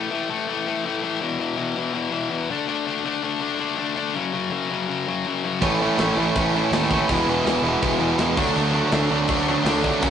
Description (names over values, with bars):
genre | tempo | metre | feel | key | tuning
punk rock | 163 BPM | 4/4 | straight | unclear | A4 = 440 Hz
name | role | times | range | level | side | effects
distorted electric guitar | riff | 0.0-10.1 s | E2 to D4 | -24 LUFS | left 6 dB | overdrive
distorted electric guitar | riff | 5.6-10.1 s | E2 to D4 | -26 LUFS | left 1 dB | overdrive
overdriven semi-hollow guitar | riff | 5.6-10.1 s | F#2 to E4 | -22 LUFS | right 5 dB | none
fuzz picked electric bass | bass | 5.6-10.1 s | E1 to E2 | -28 LUFS | equal | overdrive
tight metal drum kit | drums | 5.6-10.1 s | crash cymbal, kick drum, snare drum | -28 LUFS | left 1 dB | none
room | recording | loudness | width
moderate stone room reverb, RT60 1.0 s | rough rehearsal-room recording, tube saturation, nothing above 10.3 kHz | -20 LUFS | side -8 dB against mid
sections
0.0-10.1 A section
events
none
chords
0.0 A5; 1.2 E5; 2.5 D5; 4.1 F#5; 5.6 A; 7.1 E; 8.4 D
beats
0.11 0.47 0.84 | 1.21 1.57 1.94 2.31 | 2.68 3.04 3.41 3.78 | 4.15 4.52 4.88 5.25 | 5.62 5.99 6.36 6.73 | 7.09 7.46 7.83 8.20 | 8.57 8.93 9.30 9.67 | 10.04